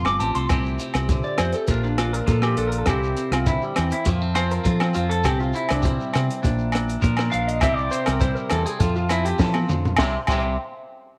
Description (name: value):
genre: highlife guitar band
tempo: 101 BPM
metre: 4/4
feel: straight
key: C mixolydian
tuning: A4 = 440 Hz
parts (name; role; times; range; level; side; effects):
- clean electric guitar; accompaniment; 0.0-10.6 s; Bb2 to Bb4; -32 LUFS; equal; phaser
- glass harmonica; sustained chords; 0.0-10.3 s; A3 to C6; -36 LUFS; equal; none
- fingered electric bass; bass; 0.0-10.6 s; G1 to F3; -26 LUFS; equal; none
- agogo bells; percussion; 0.0-10.4 s; none; -31 LUFS; equal; none
- electric guitar through a small old amp; arpeggios; 0.1-10.6 s; G3 to D6; -28 LUFS; equal; warbly pitch drift, slapback echo
- compact cocktail drum kit; drums; 0.1-10.4 s; crash cymbal, hi-hat, kick drum, rim click, snare drum, toms; -28 LUFS; equal; none
- shekere; percussion; 0.1-10.6 s; none; -32 LUFS; equal; none
room: light reverb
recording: none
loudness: -22 LUFS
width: mono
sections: 0.5-10.0 A section; 10.0-11.2 B section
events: clean electric guitar solo 0.5-10.0; drum fill 9.4-10.0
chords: 0.0 F; 0.5 C; 1.7 Bb; 2.9 C; 4.1 F; 5.3 C; 6.4 Bb; 7.6 C; 8.8 F; 10.0 C